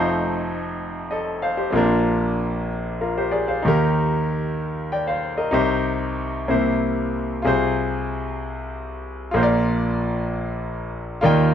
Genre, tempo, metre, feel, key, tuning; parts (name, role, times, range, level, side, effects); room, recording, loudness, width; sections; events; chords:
gospel; 63 BPM (dotted quarters); 6/8; straight; A4 = 439 Hz
bright concert grand piano; solo; 0.0-11.5 s; F1 to G5; -20 LUFS; equal
wet studio reverb, RT60 0.5 s; band playing live in one room; -20 LUFS; side -9 dB against mid
0.0-11.2 A section
0.0 F7; 1.7 Bb; 3.6 Eb; 5.5 Cm; 6.5 C7; 7.4 Fm/C; 9.3 Bb